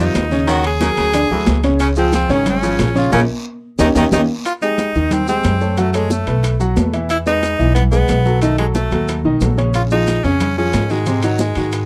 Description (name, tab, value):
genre	latin, salsa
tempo	181 BPM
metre	4/4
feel	straight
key	unclear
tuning	A4 = 440 Hz
part	edgy tenor saxophone	melody	0.0-11.9 s	Gb3 to Ab4	-22 LUFS	equal	none
part	raspy baritone saxophone	second line	0.0-4.2 s	C3 to F3	-26 LUFS	equal	none
part	bright upright piano	accompaniment	0.0-11.8 s	C3 to Gb5	-21 LUFS	equal	none
part	upright bass	bass	0.0-11.9 s	Ab1 to Ab2	-21 LUFS	equal	none
part	congas	percussion	0.1-11.9 s	none	-27 LUFS	equal	none
part	maracas	percussion	0.1-11.9 s	none	-36 LUFS	equal	none
part	bongos	percussion	0.2-11.9 s	none	-26 LUFS	equal	none
part	guiro	percussion	0.2-4.2, 9.7-11.9 s	none	-38 LUFS	equal	none
part	timbales	percussion	0.2-11.9 s	none	-29 LUFS	equal	none
room	little or no reverb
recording	dry, close 1970s-style studio recording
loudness	-16 LUFS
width	mono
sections	0.0-4.5 A section; 4.5-11.9 B section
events	band accent 3.1-4.5; drum fill 3.5-4.5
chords	0.5 Ebm7; 1.1 Dadd9; 1.8 Db6; 3.1 Bbm; 3.8 Eb7; 4.5 Abmaj7; 5.8 Gbm; 6.4 B5; 7.1 Emaj7; 8.4 B7; 9.7 Bbm7; 11.1 Ab7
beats	0.15 | 0.48 0.81 1.14 1.47 | 1.80 2.13 2.47 2.80 | 3.13 3.46 3.79 4.12 | 4.45 4.78 5.11 5.44 | 5.78 6.11 6.44 6.77 | 7.10 7.43 7.76 8.09 | 8.42 8.75 9.08 9.41 | 9.74 10.08 10.41 10.74 | 11.07 11.40 11.73